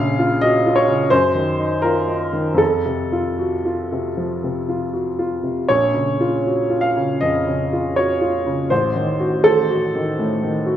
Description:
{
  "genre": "classical, romantic character piece for solo piano",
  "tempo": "75-87 BPM",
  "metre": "4/4",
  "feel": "rubato",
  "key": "Bb minor",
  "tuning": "A4 = 440 Hz",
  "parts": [
    { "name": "warm upright piano", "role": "solo", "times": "0.0-10.8 s", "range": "A1 to F5", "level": "-16 LUFS", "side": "equal", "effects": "none" }
  ],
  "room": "wet recital hall reverb, RT60 1.3 s",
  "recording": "minimal, uncompressed stereo recording",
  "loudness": "-16 LUFS",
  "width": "side -10 dB against mid",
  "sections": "0.0-10.8 A section",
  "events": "none",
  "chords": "0.0 Bbm; 1.1 Ebm/Gb; 2.6 F; 5.7 Bbm; 8.7 Adim7"
}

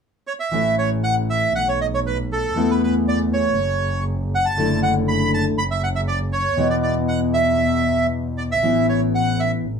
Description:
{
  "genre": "tango",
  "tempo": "118 BPM",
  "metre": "4/4",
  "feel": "rubato",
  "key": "A major",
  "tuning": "A4 = 441 Hz",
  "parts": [
    { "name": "bandoneon", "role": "melody", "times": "0.3-9.5 s", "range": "A4 to B5", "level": "-21 LUFS", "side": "right 2 dB", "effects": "none" },
    { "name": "nylon-string guitar", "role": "accompaniment", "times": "0.5-9.7 s", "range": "B2 to E4", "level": "-21 LUFS", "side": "left 2 dB", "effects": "none" },
    { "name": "dark double bass", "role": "bass", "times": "0.5-9.8 s", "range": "F#1 to E2", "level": "-24 LUFS", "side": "equal", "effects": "none" }
  ],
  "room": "wet small room reverb, RT60 0.5 s",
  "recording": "band playing live in one room",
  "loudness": "-18 LUFS",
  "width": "side -6 dB against mid",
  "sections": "0.5-9.8 A section",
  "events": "none",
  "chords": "0.0 N.C.; 0.5 A; 1.5 B7sus2; 2.6 Esus4; 3.6 F#5; 4.6 Dadd9/F#; 5.6 Dmaj9/F#; 6.6 E; 8.6 Aadd9"
}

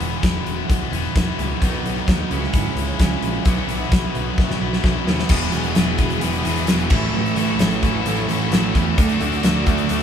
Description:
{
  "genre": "quiet-loud alternative rock",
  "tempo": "130 BPM",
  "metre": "4/4",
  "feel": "straight",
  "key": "E mixolydian from 5.3 s",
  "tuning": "A4 = 439 Hz",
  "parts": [
    { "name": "crunchy overdriven guitar", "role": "riff", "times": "0.0-10.0 s", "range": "E2 to D4", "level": "-25 LUFS", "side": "right 7 dB", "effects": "spring reverb" },
    { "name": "tight distorted guitar", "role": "riff", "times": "0.0-10.0 s", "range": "A2 to A4", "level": "-25 LUFS", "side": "left 8 dB", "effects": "distortion" },
    { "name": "picked electric bass", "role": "bass", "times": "0.0-10.0 s", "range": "E1 to E2", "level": "-26 LUFS", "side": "equal", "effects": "none" },
    { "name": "huge arena drum kit", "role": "drums", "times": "0.0-10.0 s", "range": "crash cymbal, hi-hat, kick drum, snare drum", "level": "-20 LUFS", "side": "equal", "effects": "none" },
    { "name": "rich studio string section", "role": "sustained chords", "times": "1.6-10.0 s", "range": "E4 to D6", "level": "-33 LUFS", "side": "equal", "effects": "none" },
    { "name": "fuzz guitar", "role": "riff", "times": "5.3-10.0 s", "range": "E2 to D4", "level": "-26 LUFS", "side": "right 1 dB", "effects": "distortion" }
  ],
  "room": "moderate large studio reverb, RT60 0.9 s",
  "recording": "band playing live in one room",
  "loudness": "-17 LUFS",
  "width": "side -8 dB against mid",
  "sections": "0.0-5.3 A section; 5.3-10.0 B section",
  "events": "drum fill 4.4-5.3",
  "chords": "0.0 E; 1.6 B; 2.3 C#m7; 3.5 Bsus4; 5.3 E; 6.9 A; 9.0 Dadd9"
}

